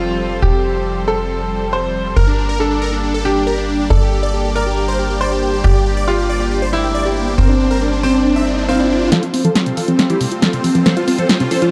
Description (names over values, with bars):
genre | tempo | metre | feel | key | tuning
uplifting trance | 138 BPM | 4/4 | straight | F major | A4 = 441 Hz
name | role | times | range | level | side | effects
bright concert grand piano | second line | 0.0-9.1 s | C4 to C5 | -22 LUFS | equal | dub echo
supersaw pad | sustained chords | 0.0-11.7 s | F3 to D5 | -27 LUFS | equal | none
tight sequencer bass | bass | 0.0-9.1 s | F1 to G1 | -21 LUFS | equal | none
supersaw chords | melody | 2.2-11.7 s | C4 to F5 | -22 LUFS | equal | low-pass filter, tape echo
riser | sound effects | 6.7-11.7 s | none | -27 LUFS | equal | none
tight sequenced synth | arpeggios | 9.1-11.7 s | C3 to F4 | -20 LUFS | equal | chorus, phaser
punchy analog drum machine | drums | 9.1-11.7 s | hi-hat, snare drum | -19 LUFS | equal | none
room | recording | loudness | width
moderate digital room reverb, RT60 1.1 s | dark, warm production | -16 LUFS | mono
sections
0.0-9.1 A section; 9.1-11.7 B section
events
riser 6.7-9.1; build-up 9.1-11.7; drum fill 9.1-11.7; filter sweep on supersaw synth 9.1-11.7; filter sweep on synth arpeggio sound 9.1-11.7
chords
0.0 Fadd9; 2.2 Gm; 9.1 Fadd9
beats
| 0.42 0.86 1.29 1.73 | 2.16 2.60 3.03 3.47 | 3.90 4.34 4.77 5.21 | 5.64 6.08 6.51 6.95 | 7.38 7.82 8.25 8.69 | 9.12 9.55 9.99 10.43 | 10.86 11.29